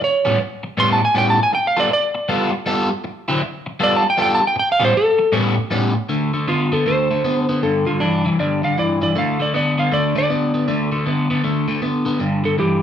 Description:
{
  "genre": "blues",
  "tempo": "157 BPM",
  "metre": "4/4",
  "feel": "swing 63% on 8ths",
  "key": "unclear",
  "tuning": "A4 = 442 Hz",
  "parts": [
    { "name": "clean lap steel guitar", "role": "melody", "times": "0.0-12.8 s", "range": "D4 to C6", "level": "-18 LUFS", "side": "right 1 dB", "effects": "none" },
    { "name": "electric guitar at the edge of break-up", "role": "riff", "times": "0.0-12.8 s", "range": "G2 to A4", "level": "-18 LUFS", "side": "left 1 dB", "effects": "phaser" }
  ],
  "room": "moderate large studio reverb, RT60 1.2 s",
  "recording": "band playing live in one room",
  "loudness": "-16 LUFS",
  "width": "side -9 dB against mid",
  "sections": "0.0-6.1 A section; 6.1-12.8 B section",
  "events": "electric slide guitar solo 0.0-6.1",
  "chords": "0.0 A9; 1.5 G9; 3.1 D9; 3.8 G9; 4.6 A9; 6.1 D5; 7.6 G5; 9.1 D5; 12.2 G5",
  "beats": "| 0.01 0.39 0.77 1.15 | 1.53 1.91 2.29 2.67 | 3.05 3.43 3.81 4.19 | 4.57 4.95 5.33 5.71 | 6.09 6.47 6.86 7.24 | 7.62 8.00 8.38 8.77 | 9.15 9.53 9.91 10.30 | 10.68 11.06 11.44 11.82 | 12.21 12.59"
}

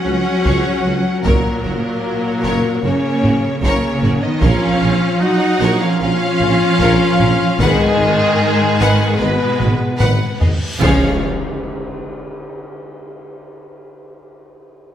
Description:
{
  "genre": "cinematic, epic orchestral film score",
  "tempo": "75 BPM",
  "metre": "4/4",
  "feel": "straight",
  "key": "Db mixolydian",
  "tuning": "A4 = 440 Hz",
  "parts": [
    { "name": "rich symphonic violin section", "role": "melody", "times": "0.0-11.3 s", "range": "Ab4 to Gb5", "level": "-23 LUFS", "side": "left 1 dB", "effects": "none" },
    { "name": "clear symphonic viola section", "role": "accompaniment", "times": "0.0-11.3 s", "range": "Eb3 to Eb4", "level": "-22 LUFS", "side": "right 1 dB", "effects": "none" },
    { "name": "mellow French horn section", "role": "sustained chords", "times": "0.0-11.2 s", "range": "Ab3 to Gb4", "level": "-20 LUFS", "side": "left 4 dB", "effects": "none" },
    { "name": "warm symphonic cello section", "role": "bass", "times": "0.0-11.3 s", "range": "Ab2 to Gb3", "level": "-20 LUFS", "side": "right 2 dB", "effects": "none" },
    { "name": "impact and reverse cymbal", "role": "sound effects", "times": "0.0-1.3, 10.4-14.0 s", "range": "none", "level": "-30 LUFS", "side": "equal", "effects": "none" },
    { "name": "clear symphonic violin section", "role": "second line", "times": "0.1-11.3 s", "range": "Db4 to Gb5", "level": "-24 LUFS", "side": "left 2 dB", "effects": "none" },
    { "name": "mellow tuba", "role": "bass", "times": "0.1-11.2 s", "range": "Gb1 to Db2", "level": "-25 LUFS", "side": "right 3 dB", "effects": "none" },
    { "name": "warm symphonic double bass section", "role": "bass", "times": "0.1-11.3 s", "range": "Gb1 to Db2", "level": "-24 LUFS", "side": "right 2 dB", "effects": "none" },
    { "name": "taiko ensemble", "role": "drums", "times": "0.5-12.4 s", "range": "none", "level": "-19 LUFS", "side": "equal", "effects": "none" },
    { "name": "cymbal swell and tam-tam", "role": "percussion", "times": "7.6-14.0 s", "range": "none", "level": "-30 LUFS", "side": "left 1 dB", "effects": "none" },
    { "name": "timpani", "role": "percussion", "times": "7.6-11.2 s", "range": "Ab2 to Db3", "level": "-25 LUFS", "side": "left 2 dB", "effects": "none" }
  ],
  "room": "moderate scoring stage reverb, RT60 1.9 s",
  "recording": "none",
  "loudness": "-13 LUFS",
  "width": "side -10 dB against mid",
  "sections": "0.0-10.8 A section; 10.8-14.0 B section",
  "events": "impact 0.0-1.3, 10.8-14.0; drum fill 9.6-10.8; reverse cymbal 10.4-10.8; band accent 10.8-11.6",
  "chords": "0.0 Dbsus4; 1.3 Gb; 4.4 Bbm; 7.6 Abm7; 10.8 Db",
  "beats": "0.46 | 1.26 2.05 2.84 3.63 | 4.42 5.21 6.01 6.80 | 7.60 8.40 9.20 10.01 | 10.83 11.63 12.43 13.23"
}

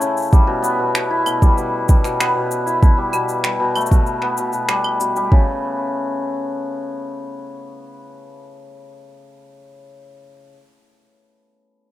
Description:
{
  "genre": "folktronica",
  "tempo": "96 BPM",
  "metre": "4/4",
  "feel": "straight",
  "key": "unclear",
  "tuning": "A4 = 439 Hz",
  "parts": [
    { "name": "hammered dulcimer", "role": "arpeggios", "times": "0.0-10.5 s", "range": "B2 to E4", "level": "-20 LUFS", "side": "left 1 dB", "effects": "low-pass filter, tape echo" },
    { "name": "electronic shaker, finger snaps and claves", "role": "drums", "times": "0.0-5.3 s", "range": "none", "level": "-24 LUFS", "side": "right 1 dB", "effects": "overdrive" },
    { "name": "electronic kick drum", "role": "drums", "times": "0.3-5.4 s", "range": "none", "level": "-12 LUFS", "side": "equal", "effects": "overdrive" }
  ],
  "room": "little or no reverb",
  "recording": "rough home demo mix",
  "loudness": "-16 LUFS",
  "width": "side -14 dB against mid",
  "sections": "0.0-5.3 A section; 5.3-7.8 B section",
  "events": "none",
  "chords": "0.3 Em; 5.3 N.C.",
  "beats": "| 0.32 0.95 1.57 2.20 | 2.82 3.45 4.07 4.70 | 5.32 5.95 6.57 7.20"
}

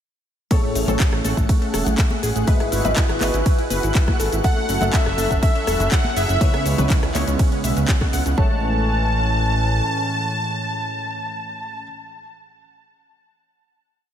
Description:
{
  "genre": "progressive house",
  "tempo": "122 BPM",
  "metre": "4/4",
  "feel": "straight",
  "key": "A major",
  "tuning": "A4 = 441 Hz",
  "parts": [
    { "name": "warm analog pad", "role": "sustained chords", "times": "0.5-11.8 s", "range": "A2 to B4", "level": "-27 LUFS", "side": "right 1 dB", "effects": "chorus, sidechain pumping" },
    { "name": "wide unison pluck", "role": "arpeggios", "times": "0.5-11.8 s", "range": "A3 to F#5", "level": "-28 LUFS", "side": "right 1 dB", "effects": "sidechain pumping, diffuse ambient delay" },
    { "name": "felt-muted upright piano", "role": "stabs", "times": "0.5-11.8 s", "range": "G#2 to E5", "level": "-28 LUFS", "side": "left 2 dB", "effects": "ensemble chorus, sidechain pumping, diffuse ambient delay" },
    { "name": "electronic kick drum", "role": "drums", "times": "0.5-8.5 s", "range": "none", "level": "-18 LUFS", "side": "equal", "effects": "overdrive, studio reverb" },
    { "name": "house drum kit", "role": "drums", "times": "0.5-8.4 s", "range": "cabasa, handclaps, hi-hat, ride cymbal, rim click", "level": "-27 LUFS", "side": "left 1 dB", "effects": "overdrive, studio reverb" },
    { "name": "congas", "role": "percussion", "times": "0.5-8.1 s", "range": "none", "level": "-31 LUFS", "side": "left 2 dB", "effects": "none" },
    { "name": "twinkling granular texture", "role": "texture", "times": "0.9-8.4 s", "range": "F#5 to F#6", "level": "-35 LUFS", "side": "equal", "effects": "built-in reverb, analog chorus, sidechain pumping" },
    { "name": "fat analog bass", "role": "bass", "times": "0.8-9.8 s", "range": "E1 to C#2", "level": "-22 LUFS", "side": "equal", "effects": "sidechain pumping" },
    { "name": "soft supersaw", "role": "melody", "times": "4.4-11.8 s", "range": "E5 to A5", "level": "-25 LUFS", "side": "equal", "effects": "ping-pong delay" },
    { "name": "soft synth bell", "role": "second line", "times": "4.4-11.8 s", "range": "E5 to A5", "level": "-31 LUFS", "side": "left 2 dB", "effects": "none" }
  ],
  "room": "moderate lush hall reverb, RT60 1.9 s",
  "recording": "dreamy mix soaked in reverb",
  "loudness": "-17 LUFS",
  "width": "side -9 dB against mid",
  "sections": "0.5-8.4 drop; 8.4-12.3 final chord",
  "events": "drop 0.5-8.4",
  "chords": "0.5 Amaj7; 2.5 Eadd9/G#; 4.4 F#m7; 6.4 C#m7; 8.4 Amaj7",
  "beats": "| 0.51 1.00 1.49 1.98 | 2.48 2.97 3.46 3.95 | 4.44 4.93 5.43 5.92 | 6.41 6.90 7.39 7.89 | 8.38 8.87 9.36 9.85 | 10.35 10.84 11.33"
}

